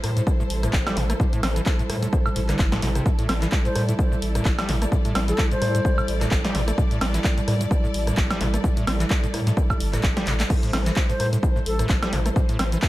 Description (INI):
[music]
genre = acid house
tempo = 129 BPM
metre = 4/4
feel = swing 56% on 16ths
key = A minor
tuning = A4 = 440 Hz
[part]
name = warm symphonic string section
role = sustained chords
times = 0.0-12.9 s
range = G3 to D5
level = -29 LUFS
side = right 1 dB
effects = vintage 12-bit sampler grit, sidechain pumping
[part]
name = acid bass, square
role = riff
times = 0.0-12.8 s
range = A2 to C4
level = -28 LUFS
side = equal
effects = overdrive
[part]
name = round analog bass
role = bass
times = 0.0-12.8 s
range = G1 to A2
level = -25 LUFS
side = equal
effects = tube saturation, sidechain pumping
[part]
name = punchy analog drum machine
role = drums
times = 0.0-12.9 s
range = crash cymbal, handclaps, hi-hat, rim click, shaker, snare drum, woodblock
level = -28 LUFS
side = equal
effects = none
[part]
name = electronic kick drum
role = drums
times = 0.3-12.9 s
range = none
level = -22 LUFS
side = equal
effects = none
[part]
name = breathy mellow jazz flute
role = melody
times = 3.7-6.2, 11.1-11.9 s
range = A4 to C5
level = -29 LUFS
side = left 2 dB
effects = digital delay
[sound]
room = digital ambience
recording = none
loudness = -20 LUFS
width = side -16 dB against mid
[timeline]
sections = 0.0-12.9 A section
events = drum fill 10.3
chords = 0.0 Am7